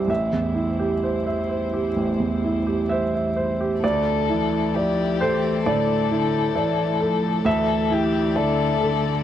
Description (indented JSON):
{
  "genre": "neoclassical piano and strings",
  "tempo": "65 BPM",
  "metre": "4/4",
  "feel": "rubato",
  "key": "unclear",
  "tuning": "A4 = 438 Hz",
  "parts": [
    { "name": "clear baby grand piano", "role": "accompaniment", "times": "0.0-9.2 s", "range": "A1 to E5", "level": "-21 LUFS", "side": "right 2 dB", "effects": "none" },
    { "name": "warm chamber string section", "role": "sustained chords", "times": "0.0-9.2 s", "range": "G3 to D5", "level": "-32 LUFS", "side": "left 5 dB", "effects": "none" },
    { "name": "dark violin", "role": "melody", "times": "3.8-9.2 s", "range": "G4 to A4", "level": "-25 LUFS", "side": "left 11 dB", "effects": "none" },
    { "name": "warm cello", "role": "second line", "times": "3.8-9.2 s", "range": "D3 to F3", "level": "-27 LUFS", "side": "equal", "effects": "none" }
  ],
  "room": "light reverb, small room ambience",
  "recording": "dry, close 1970s-style studio recording",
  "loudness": "-20 LUFS",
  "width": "side -11 dB against mid",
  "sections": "0.0-3.8 A section; 3.8-9.2 B section",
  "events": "none",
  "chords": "0.1 Am7; 3.8 Dsus2",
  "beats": "| 0.09 1.03 1.96 2.89 | 3.82 4.74 5.65 6.56 | 7.46 8.36"
}